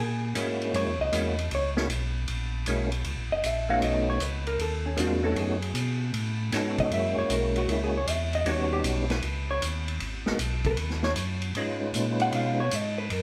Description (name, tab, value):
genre	soul jazz organ trio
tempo	155 BPM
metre	4/4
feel	swing 67% on 8ths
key	F# mixolydian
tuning	A4 = 440 Hz
part	vintage hollow-body jazz guitar	accompaniment	0.0-13.2 s	C#4 to F#5	-32 LUFS	equal	none
part	mellow tonewheel organ	bass	0.0-13.2 s	F#1 to B2	-33 LUFS	equal	overdrive, chorus vibrato, slow rotary speaker
part	percussive tonewheel organ	melody	0.3-12.6 s	G3 to B4	-32 LUFS	equal	slow rotary speaker, chorus vibrato
part	vintage drum kit	drums	0.4-13.2 s	hi-hat, kick drum, ride cymbal, snare drum	-36 LUFS	equal	none
room	moderate stone room reverb, RT60 1.2 s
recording	band playing live in one room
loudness	-28 LUFS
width	mono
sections	0.0-13.2 A section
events	hollow-body jazz guitar solo 0.0-13.2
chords	0.0 F#7; 3.8 B7; 6.9 F#7; 8.5 D#7alt; 10.0 G#m7; 11.5 C#7